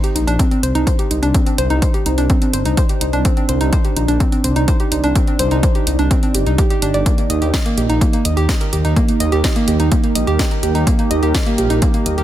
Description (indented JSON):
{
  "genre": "melodic techno",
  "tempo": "126 BPM",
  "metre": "4/4",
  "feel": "straight",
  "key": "C minor",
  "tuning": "A4 = 437 Hz",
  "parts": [
    { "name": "deep dark ambient pad", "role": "sustained chords", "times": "1.2-12.2 s", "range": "D4 to D5", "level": "-24 LUFS", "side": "right 3 dB", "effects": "chorus, built-in reverb, sidechain pumping" },
    { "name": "woody wave-folded pluck", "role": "arpeggios", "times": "0.0-12.2 s", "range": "Bb3 to Eb5", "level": "-19 LUFS", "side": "right 1 dB", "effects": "chorus, sidechain pumping, dub echo" },
    { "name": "techno drum kit", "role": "drums", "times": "0.0-12.2 s", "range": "hi-hat, snare drum", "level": "-24 LUFS", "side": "right 1 dB", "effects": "none" },
    { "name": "dark detuned saw bass", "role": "bass", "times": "0.2-12.2 s", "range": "G1 to Eb2", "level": "-18 LUFS", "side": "equal", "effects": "tube saturation, sidechain pumping" },
    { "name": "electronic kick drum", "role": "drums", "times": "0.4-11.9 s", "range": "none", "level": "-17 LUFS", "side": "equal", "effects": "none" }
  ],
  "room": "digital ambience",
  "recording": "none",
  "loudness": "-13 LUFS",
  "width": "side -12 dB against mid",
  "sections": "0.0-12.2 A section",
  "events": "none",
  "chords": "0.0 Cmadd9; 7.1 Eb",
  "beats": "0.39 0.87 | 1.35 1.82 2.30 2.77 | 3.25 3.73 4.20 4.68 | 5.16 5.63 6.11 6.58 | 7.06 7.54 8.01 8.49 | 8.96 9.44 9.92 10.39 | 10.87 11.35 11.82"
}